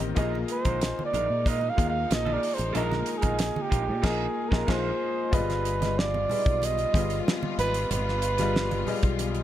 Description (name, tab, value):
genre	lush 1970s-style soul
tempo	93 BPM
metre	4/4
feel	straight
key	unclear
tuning	A4 = 441 Hz
part	warm baby grand piano	accompaniment	0.0-9.4 s	Eb3 to Eb5	-32 LUFS	left 6 dB	none
part	rich symphonic string section	sustained chords	0.0-9.4 s	Eb3 to G4	-37 LUFS	left 2 dB	none
part	electric guitar through a small old amp	riff	0.0-4.9 s	Ab3 to Bb4	-37 LUFS	right 8 dB	spring reverb
part	fingered electric bass	bass	0.0-9.4 s	G1 to Bb2	-31 LUFS	equal	none
part	damped 70s drum kit	drums	0.0-9.4 s	crash cymbal, hi-hat, kick drum, snare drum	-28 LUFS	equal	none
part	congas	percussion	0.2-9.4 s	none	-36 LUFS	right 4 dB	none
part	mellow flugelhorn	melody	0.5-9.2 s	G4 to F5	-29 LUFS	right 4 dB	none
room	little or no reverb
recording	faint mains hum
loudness	-24 LUFS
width	side -12 dB against mid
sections	0.0-5.3 A section; 5.3-9.4 B section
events	flugelhorn solo 0.0-5.3; band accent 4.0-5.3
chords	0.2 Bb7sus4; 5.3 G7b9b13